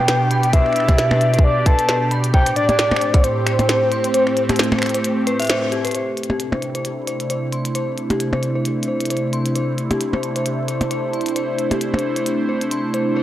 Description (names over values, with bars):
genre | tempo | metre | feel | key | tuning
IDM | 133 BPM | 4/4 | swing 56% on 16ths | C major | A4 = 440 Hz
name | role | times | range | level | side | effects
warbly nostalgic lead | melody | 0.0-5.5 s | C5 to A5 | -19 LUFS | left 1 dB | chorus, analog delay
phased analog pad | sustained chords | 0.0-13.2 s | A2 to D5 | -21 LUFS | right 1 dB | phaser, chorus, vintage 12-bit sampler grit
dark detuned synth bell | arpeggios | 0.1-13.2 s | G4 to C6 | -25 LUFS | left 3 dB | chorus, low-pass filter, analog delay
glitchy drum kit | drums | 0.1-13.0 s | finger snaps, hi-hat, percussion blips, snare drum | -22 LUFS | equal | none
electronic kick drum | drums | 0.5-3.2 s | none | -14 LUFS | equal | none
room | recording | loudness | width
light reverb, digital ambience | dry, gritty hardware recording | -16 LUFS | side -13 dB against mid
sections
0.0-5.9 A section; 5.9-13.2 B section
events
kick drops out 4.1-5.9; band accent 5.5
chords
0.0 G/B; 2.3 Am7; 5.9 C6